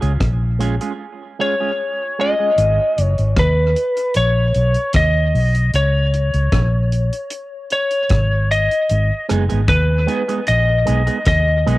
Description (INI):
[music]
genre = dub reggae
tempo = 76 BPM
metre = 4/4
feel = straight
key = G# dorian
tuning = A4 = 440 Hz
[part]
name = electric guitar with an envelope filter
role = accompaniment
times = 0.0-2.5, 9.3-11.8 s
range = G#3 to G#4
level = -24 LUFS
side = right 6 dB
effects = spring reverb, cassette tape, dub echo
[part]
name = vintage muted fingered electric bass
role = bass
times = 0.0-11.8 s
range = F#1 to D#2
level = -16 LUFS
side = equal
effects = none
[part]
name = deep reggae drum kit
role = drums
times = 0.0-11.8 s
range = hi-hat, kick drum, rim click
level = -21 LUFS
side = equal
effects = cassette tape
[part]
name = lightly driven lead guitar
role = melody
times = 1.4-11.8 s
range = B4 to D#5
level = -18 LUFS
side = left 1 dB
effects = cassette tape, dub echo
[sound]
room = light reverb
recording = home recording on cassette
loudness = -15 LUFS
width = side -18 dB against mid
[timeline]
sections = 0.0-2.6 A section; 2.6-11.8 B section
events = none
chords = 0.0 C#; 2.6 G#m; 5.7 C#5; 8.9 G#m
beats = 0.21 1.00 1.79 | 2.58 3.37 4.16 4.95 | 5.74 6.53 7.32 8.11 | 8.90 9.69 10.48 11.27